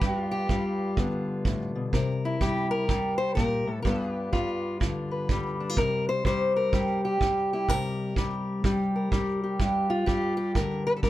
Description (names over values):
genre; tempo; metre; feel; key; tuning
acoustic country blues, solo or duo; 125 BPM; 4/4; swing 64% on 8ths; G mixolydian; A4 = 440 Hz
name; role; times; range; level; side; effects
fingerpicked acoustic archtop guitar; melody; 0.0-11.1 s; G2 to C5; -26 LUFS; left 1 dB; none
kick drum; drums; 0.0-11.1 s; none; -28 LUFS; right 2 dB; none
room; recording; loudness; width
little or no reverb; none; -25 LUFS; side -14 dB against mid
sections
0.0-11.1 A section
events
none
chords
0.0 G7; 1.9 C7; 3.9 G7; 5.8 C7(no3); 9.6 G7(no3)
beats
| 0.02 0.50 0.98 1.46 | 1.94 2.41 2.89 3.37 | 3.85 4.33 4.81 5.29 | 5.76 6.24 6.72 7.20 | 7.68 8.16 8.64 9.12 | 9.60 10.08 10.56 11.04